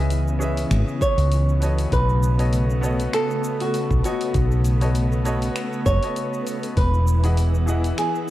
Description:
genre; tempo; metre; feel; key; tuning
sunset chillout; 99 BPM; 4/4; swing 55% on 16ths; unclear; A4 = 440 Hz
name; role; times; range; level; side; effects
flamenco guitar; melody; 0.0-8.3 s; F#4 to C#5; -27 LUFS; right 1 dB; analog delay
clear grand piano; accompaniment; 0.0-8.3 s; E3 to F#5; -29 LUFS; left 1 dB; auto-pan, analog delay
soft string machine; sustained chords; 0.0-8.3 s; C#3 to E4; -28 LUFS; left 1 dB; ensemble chorus
woody fretless electric bass; bass; 0.0-7.9 s; E1 to C#2; -19 LUFS; equal; none
deep house drum kit; drums; 0.1-8.3 s; finger snaps, hi-hat, shaker; -35 LUFS; left 1 dB; none
electronic kick drum; drums; 1.0-6.9 s; none; -23 LUFS; equal; none
room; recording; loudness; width
light reverb, small room ambience; dry, gritty hardware recording; -19 LUFS; side -14 dB against mid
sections
0.0-8.3 A section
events
none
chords
0.0 C#m9; 1.9 B9; 6.8 Emaj7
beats
0.10 0.71 1.31 | 1.92 2.53 3.13 3.74 | 4.34 4.95 5.56 6.16 | 6.77 7.38 7.98

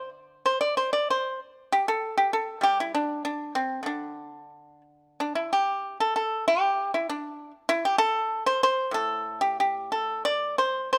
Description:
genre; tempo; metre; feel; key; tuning
chinese traditional, Chinese solo plucked strings; 87-101 BPM; 2/4; rubato; D shang mode; A4 = 441 Hz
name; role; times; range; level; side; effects
pipa; solo; 0.0-11.0 s; A2 to D5; -26 LUFS; equal; none
room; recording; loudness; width
light reverb; close, detailed microphones; -27 LUFS; mono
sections
0.0-5.2 A section; 5.2-11.0 B section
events
none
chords
none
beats
| 0.11 0.77 | 1.40 2.02 | 2.63 3.23 | 3.85 4.50 | 5.18 5.83 | 6.46 7.08 | 7.68 8.30 | 8.93 9.57 | 10.24 10.91

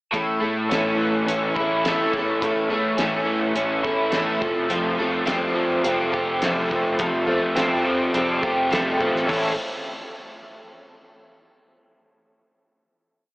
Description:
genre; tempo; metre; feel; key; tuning
folk rock and heartland rock; 105 BPM; 4/4; straight; unclear; A4 = 440 Hz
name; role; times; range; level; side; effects
picked twelve-string acoustic guitar; accompaniment; 0.1-9.5 s; A2 to A4; -24 LUFS; equal; none
overdriven electric guitar; riff; 0.1-9.5 s; A2 to A4; -22 LUFS; equal; analog chorus
fingered electric bass; bass; 0.1-9.6 s; F1 to A2; -35 LUFS; equal; none
cloth-damped thuddy drum kit; drums; 0.1-9.4 s; hi-hat, kick drum, snare drum, toms; -31 LUFS; equal; none
room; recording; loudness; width
wet huge ambient reverb, RT60 4.0 s; dreamy mix soaked in reverb, AM radio sound; -20 LUFS; side -22 dB against mid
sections
0.1-9.3 verse; 9.3-11.6 final chord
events
none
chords
0.1 A; 4.4 Fadd9; 9.3 A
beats
| 0.13 0.70 1.27 1.84 | 2.41 2.98 3.56 4.13 | 4.70 5.27 5.84 6.42 | 6.99 7.56 8.13 8.71 | 9.28

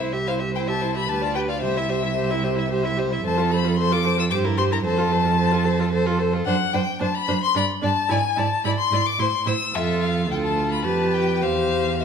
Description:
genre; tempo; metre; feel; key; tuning
quick classical-period movement for string quartet; 110 BPM; 3/4; rubato; C major; A4 = 437 Hz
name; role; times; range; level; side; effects
rich violin; melody; 0.0-12.0 s; E5 to E6; -24 LUFS; left 6 dB; none
rich violin; second line; 0.0-12.0 s; A4 to E5; -27 LUFS; left 3 dB; none
clear viola; accompaniment; 0.0-12.0 s; D4 to A4; -27 LUFS; right 2 dB; none
warm cello; bass; 0.0-12.0 s; C2 to A2; -24 LUFS; right 5 dB; none
room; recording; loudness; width
wet recital hall reverb, RT60 1.5 s; none; -19 LUFS; side -7 dB against mid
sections
0.0-12.0 A section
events
none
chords
0.0 C; 1.1 G7/D; 1.6 C; 3.3 F; 4.3 C7/G; 4.9 F; 6.5 D7/F#; 7.6 G5; 8.1 E7/G#; 9.2 Am; 9.7 F; 10.3 Dm; 10.9 G7/F; 11.4 C/E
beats
0.54 1.08 | 1.62 2.16 2.71 | 3.25 3.79 4.32 | 4.85 5.38 5.92 | 6.46 7.01 7.56 | 8.10 8.65 9.20 | 9.74 10.30 10.85 | 11.43 12.01

